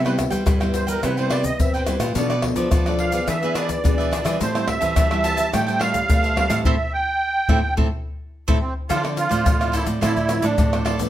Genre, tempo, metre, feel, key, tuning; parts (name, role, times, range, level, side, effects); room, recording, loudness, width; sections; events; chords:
samba and choro; 107 BPM; 4/4; straight; A minor; A4 = 440 Hz
musette accordion; melody; 0.0-10.8 s; C4 to A5; -23 LUFS; right 2 dB
cavaquinho; accompaniment; 0.0-11.1 s; D4 to A5; -30 LUFS; right 3 dB
nylon-string guitar; accompaniment; 0.0-11.1 s; G2 to G#4; -28 LUFS; left 2 dB
nylon-string guitar; bass; 0.0-11.1 s; A2 to C4; -24 LUFS; right 1 dB
egg shaker, pandeiro, tamborim and surdo; percussion; 0.1-11.1 s; -22 LUFS; left 1 dB
moderate studio reverb, RT60 0.8 s; -18 LUFS; side -12 dB against mid
0.0-8.9 A section; 8.9-11.1 B section
accordion solo 0.0-8.9; band accent 6.7-8.9
0.0 Cmaj7; 2.2 Bm7b5; 3.3 E7; 4.4 Am7; 8.9 Dm9